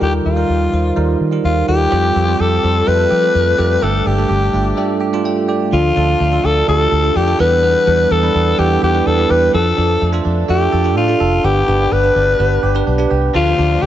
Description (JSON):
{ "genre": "pop", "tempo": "126 BPM", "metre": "4/4", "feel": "straight", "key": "D dorian", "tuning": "A4 = 439 Hz", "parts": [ { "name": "breathy alto saxophone", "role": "melody", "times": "0.0-13.9 s", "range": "F4 to B4", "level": "-16 LUFS", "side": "left 3 dB", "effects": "none" }, { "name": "bell-like tine electric piano", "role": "accompaniment", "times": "0.0-13.9 s", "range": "G2 to G5", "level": "-18 LUFS", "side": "right 4 dB", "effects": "phaser" }, { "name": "vintage muted fingered electric bass", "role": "bass", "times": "0.0-13.9 s", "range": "F1 to F3", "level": "-17 LUFS", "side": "equal", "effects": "none" }, { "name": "direct-recorded clean electric guitar", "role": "riff", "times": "1.9-13.9 s", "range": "F3 to A4", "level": "-24 LUFS", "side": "right 6 dB", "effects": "wide subtle chorus" }, { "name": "overdriven electric guitar", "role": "accompaniment", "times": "13.3-13.9 s", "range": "D3 to D4", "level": "-24 LUFS", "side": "left 6 dB", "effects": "ensemble chorus" } ], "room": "light reverb", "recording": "nothing above 7.9 kHz", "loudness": "-12 LUFS", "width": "side -12 dB against mid", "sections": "0.0-5.7 A section; 5.7-13.9 B section", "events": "none", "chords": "0.0 Ebadd9; 1.9 Fadd9; 3.8 Gsus2; 5.7 Dm; 7.4 Em7; 9.5 Dm/F; 11.4 G; 13.3 Dm" }